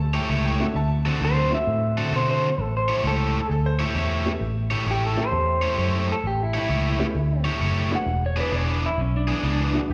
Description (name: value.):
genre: blues.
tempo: 131 BPM.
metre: 4/4.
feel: swing 66% on 8ths.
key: A mixolydian.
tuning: A4 = 440 Hz.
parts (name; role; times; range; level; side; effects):
clear upright piano; second line; 0.0-4.8, 9.9 s; G4 to A5; -36 LUFS; equal; slapback echo.
vintage muted fingered electric bass; bass; 0.0-9.9 s; E1 to B2; -27 LUFS; equal; none.
cranked stack guitar; riff; 0.1-9.8 s; D3 to C#5; -29 LUFS; equal; overdrive.
honky-tonk upright piano; accompaniment; 0.6-9.9 s; G3 to G4; -33 LUFS; equal; slapback echo.
electric guitar through a small old amp; melody; 1.2-9.9 s; C#4 to F#5; -29 LUFS; equal; slapback echo.
room: light reverb, small room ambience.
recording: live gig heard through the venue's PA, club reverb.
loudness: -23 LUFS.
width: mono.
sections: 0.0-9.9 A section.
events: none.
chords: 0.0 A7; 0.8 D7; 2.6 A7; 8.1 E7.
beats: 0.30 | 0.75 1.21 1.67 2.13 | 2.58 3.04 3.50 3.96 | 4.41 4.87 5.33 5.78 | 6.24 6.70 7.15 7.61 | 8.07 8.53 8.98 9.44 | 9.89.